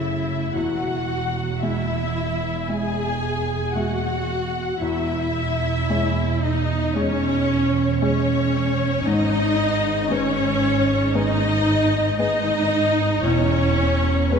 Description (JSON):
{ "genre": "cinematic, emotional film score for orchestra", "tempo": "56 BPM", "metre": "4/4", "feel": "rubato", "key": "E major", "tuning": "A4 = 440 Hz", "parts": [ { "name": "rich symphonic violin section", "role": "melody", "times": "0.0-14.4 s", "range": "B4 to G#5", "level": "-30 LUFS", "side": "left 4 dB", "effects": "none" }, { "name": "rich symphonic violin section", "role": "second line", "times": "0.0-14.4 s", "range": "B4 to G#5", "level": "-29 LUFS", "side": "left 2 dB", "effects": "none" }, { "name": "felt-muted upright piano", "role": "accompaniment", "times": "0.0-14.4 s", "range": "E2 to E5", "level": "-27 LUFS", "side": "left 4 dB", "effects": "none" }, { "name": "warm symphonic viola section", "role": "accompaniment", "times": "0.0-14.4 s", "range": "B3 to G#4", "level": "-24 LUFS", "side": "equal", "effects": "none" }, { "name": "rich symphonic cello section", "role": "bass", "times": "0.0-14.4 s", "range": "E2 to C#3", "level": "-27 LUFS", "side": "right 2 dB", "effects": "none" }, { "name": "warm symphonic double bass section", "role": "bass", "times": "0.0-14.4 s", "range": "E1 to G#1", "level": "-26 LUFS", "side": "right 4 dB", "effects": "none" } ], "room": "wet concert hall reverb, RT60 2.5 s", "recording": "none", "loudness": "-19 LUFS", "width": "side -6 dB against mid", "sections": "0.0-14.4 A section", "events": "none", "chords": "0.0 F#m; 0.5 E; 4.8 C#m/E; 9.1 G#m; 13.2 E", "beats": "| 0.55 1.62 2.68 3.75 | 4.82 5.89 6.96 8.01 | 9.06 10.10 11.15 12.20 | 13.25 14.32" }